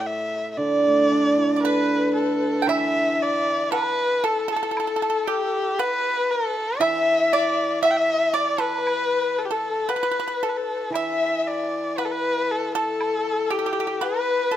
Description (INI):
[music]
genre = chinese traditional, Chinese chamber ensemble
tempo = 58 BPM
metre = 2/4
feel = straight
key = unclear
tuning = A4 = 438 Hz
[part]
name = warm erhu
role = melody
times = 0.0-14.6 s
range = G4 to G5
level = -24 LUFS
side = equal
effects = none
[part]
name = hammered dulcimer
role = accompaniment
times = 0.0-14.0 s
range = A2 to A4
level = -25 LUFS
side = right 2 dB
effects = none
[part]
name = pipa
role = second line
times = 1.6-14.6 s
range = G4 to G5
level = -26 LUFS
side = right 5 dB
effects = none
[part]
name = mellow large dizi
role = second line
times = 1.7-14.6 s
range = A4 to E5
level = -26 LUFS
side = left 6 dB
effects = none
[part]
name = woodblock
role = percussion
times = 2.7-14.3 s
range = none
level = -35 LUFS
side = left 3 dB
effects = none
[sound]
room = moderate recital hall reverb, RT60 1.7 s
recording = close, detailed microphones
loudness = -20 LUFS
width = side -11 dB against mid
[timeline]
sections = 0.0-2.7 A section; 2.7-14.6 B section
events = none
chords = none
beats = | 0.60 1.64 | 2.69 3.73 | 4.76 5.79 | 6.82 7.83 | 8.86 9.90 | 10.94 11.98 | 13.01 14.03